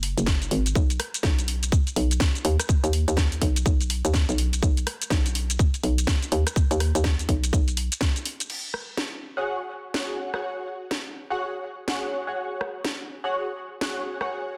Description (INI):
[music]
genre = bass house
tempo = 124 BPM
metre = 4/4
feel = swing 61% on 16ths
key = unclear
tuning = A4 = 440 Hz
[part]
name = hollow knocking FM bass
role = bass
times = 0.0-7.9 s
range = F#1 to D#2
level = -26 LUFS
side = equal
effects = tube saturation, sidechain pumping
[part]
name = garage drum kit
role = drums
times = 0.0-14.3 s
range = crash cymbal, hi-hat, rim click, shaker, snare drum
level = -31 LUFS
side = equal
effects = none
[part]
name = electronic kick drum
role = drums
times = 0.3-8.1 s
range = none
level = -25 LUFS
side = equal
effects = none
[part]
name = band-passed chord stab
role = stabs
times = 9.4-14.6 s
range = F#4 to F#5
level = -32 LUFS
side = equal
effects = phaser, ensemble chorus, sidechain pumping, tape echo
[sound]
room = light reverb, digital ambience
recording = dense, heavily limited modern master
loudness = -25 LUFS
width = mono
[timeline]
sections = 0.0-8.5 A section; 8.5-14.6 B section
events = drop 0.0-8.5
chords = 0.0 F#sus2; 0.8 B; 8.5 F#sus2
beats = 0.27 | 0.75 1.24 1.72 2.21 | 2.69 3.17 3.66 4.14 | 4.62 5.11 5.59 6.08 | 6.56 7.04 7.53 8.01 | 8.50 8.98 9.46 9.95 | 10.43 10.92 11.40 11.88 | 12.37 12.85 13.34 13.82 | 14.30